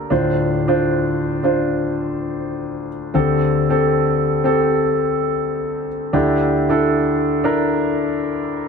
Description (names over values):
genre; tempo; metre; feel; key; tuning
pop; 80 BPM; 4/4; straight; D minor; A4 = 440 Hz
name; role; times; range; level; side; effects
warm concert grand piano; solo; 0.0-8.7 s; D2 to C5; -16 LUFS; equal; none
room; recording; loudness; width
moderate lush hall reverb, RT60 2.6 s; none; -16 LUFS; side -5 dB against mid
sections
0.0-8.7 A section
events
none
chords
0.1 Dm7; 3.1 Am7/D; 6.1 Em7/D